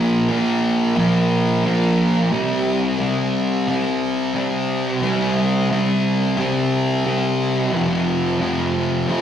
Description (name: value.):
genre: rock.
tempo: 89 BPM.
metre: 4/4.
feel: straight.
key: unclear.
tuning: A4 = 440 Hz.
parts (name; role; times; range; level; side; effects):
thick fuzz guitar; solo; 0.0-9.2 s; F2 to C4; -17 LUFS; equal; distortion, slapback echo.
room: wet stone room reverb, RT60 1.2 s.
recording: rough rehearsal-room recording, warm saturation.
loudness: -17 LUFS.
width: side -9 dB against mid.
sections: 0.0-9.2 A section.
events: none.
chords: 0.0 Bb5; 2.3 C5; 7.7 F5.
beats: 0.29 0.97 1.64 | 2.32 3.00 3.67 4.35 | 5.03 5.70 6.38 7.05 | 7.73 8.40 9.08.